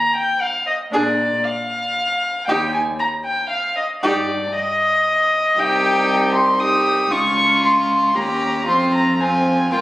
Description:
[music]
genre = quick classical-period movement for string quartet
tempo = 116 BPM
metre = 3/4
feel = straight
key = Eb major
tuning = A4 = 442 Hz
[part]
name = dark violin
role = melody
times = 0.0-9.8 s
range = D5 to Eb6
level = -18 LUFS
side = left 1 dB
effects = none
[part]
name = warm violin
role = second line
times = 0.9-9.8 s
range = F4 to Ab4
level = -22 LUFS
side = equal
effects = none
[part]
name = rich viola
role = accompaniment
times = 0.9-9.8 s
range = Bb3 to Eb4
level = -22 LUFS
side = equal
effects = none
[part]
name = warm cello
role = bass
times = 0.9-9.8 s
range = C2 to Bb2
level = -26 LUFS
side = right 1 dB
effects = none
[sound]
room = moderate recital hall reverb, RT60 1.4 s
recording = recorded on a phone in the room, club reverb, compression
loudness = -16 LUFS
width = side -17 dB against mid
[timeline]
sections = 0.0-9.8 A section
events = none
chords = 0.0 N.C.; 0.9 Bb; 2.5 Eb; 4.0 Eb/G; 5.6 Cm; 7.1 Db; 8.2 Eb7; 8.7 Fm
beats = 0.41 | 0.93 1.45 1.97 | 2.49 3.00 3.52 | 4.04 4.55 5.07 | 5.58 6.09 6.61 | 7.12 7.64 8.15 | 8.67 9.19 9.72

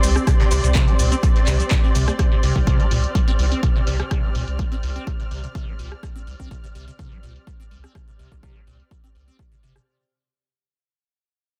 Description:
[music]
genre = acid house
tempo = 125 BPM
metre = 4/4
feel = straight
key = unclear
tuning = A4 = 441 Hz
[part]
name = liquid acid bass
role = riff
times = 0.0-9.8 s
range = C2 to C4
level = -29 LUFS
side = equal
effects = phaser, lush chorus, sidechain pumping, delay
[part]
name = warm sub bass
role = bass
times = 0.0-9.8 s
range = G1 to C2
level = -24 LUFS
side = equal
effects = sidechain pumping
[part]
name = punchy analog drum machine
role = drums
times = 0.0-9.8 s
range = cabasa, handclaps, hi-hat, rim click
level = -31 LUFS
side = equal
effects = low-pass filter on snare, low-pass filter on hats, low-pass filter on perc
[part]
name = soft brush drum kit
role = drums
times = 0.0-2.1 s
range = hi-hat, snare drum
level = -38 LUFS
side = equal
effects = none
[part]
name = muted studio string section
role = texture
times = 0.0-9.9 s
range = C4 to F6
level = -30 LUFS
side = equal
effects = sidechain pumping
[part]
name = electronic kick drum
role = drums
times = 0.3-9.5 s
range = none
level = -22 LUFS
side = equal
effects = none
[sound]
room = little or no reverb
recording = dense, heavily limited modern master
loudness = -19 LUFS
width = mono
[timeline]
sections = 0.0-9.9 A section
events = fade-out 0.0-9.9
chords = 0.0 C5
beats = | 0.27 0.75 1.23 1.71 | 2.19 2.67 3.15 3.63 | 4.11 4.59 5.07 5.55 | 6.03 6.51 6.99 7.47 | 7.95 8.43 8.91 9.39

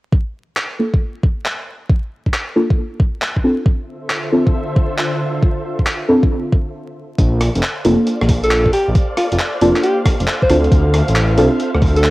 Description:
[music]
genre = UK garage, two-step garage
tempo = 136 BPM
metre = 4/4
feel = swing 66% on 16ths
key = unclear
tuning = A4 = 440 Hz
[part]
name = electronic kick drum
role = drums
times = 0.1-11.9 s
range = none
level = -15 LUFS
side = equal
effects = overdrive
[part]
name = breakbeat sampler-style drum kit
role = drums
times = 0.6-12.1 s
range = handclaps, hi-hat, rim click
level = -22 LUFS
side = equal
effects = none
[part]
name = deep mellow chord stab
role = stabs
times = 0.8-12.1 s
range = Bb3 to A4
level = -17 LUFS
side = equal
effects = chorus, cassette tape, analog delay
[part]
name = soft string machine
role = sustained chords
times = 4.0-12.1 s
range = D3 to F5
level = -25 LUFS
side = equal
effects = ensemble chorus, sidechain pumping, cassette tape
[part]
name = dark detuned saw bass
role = bass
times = 7.2-12.1 s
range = F1 to D2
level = -16 LUFS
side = equal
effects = none
[part]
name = breathy alto saxophone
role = melody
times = 8.4-12.1 s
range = F4 to C5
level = -18 LUFS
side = equal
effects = cassette tape, analog delay
[sound]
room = digital ambience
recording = home recording on cassette, vinyl crackle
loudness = -14 LUFS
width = side -19 dB against mid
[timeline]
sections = 0.1-7.2 A section; 7.2-12.1 B section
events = filter sweep on synth stab 0.1-7.2; stop 6.7-7.2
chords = 0.1 Bbmaj7; 3.4 Dm7; 7.0 N.C.; 7.2 Bbmaj7; 10.5 Dm7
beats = | 0.13 0.57 1.01 1.45 | 1.89 2.33 2.78 3.22 | 3.66 4.10 4.54 4.98 | 5.42 5.86 6.31 6.75 | 7.19 7.63 8.07 8.51 | 8.95 9.39 9.84 10.28 | 10.72 11.16 11.60 12.04

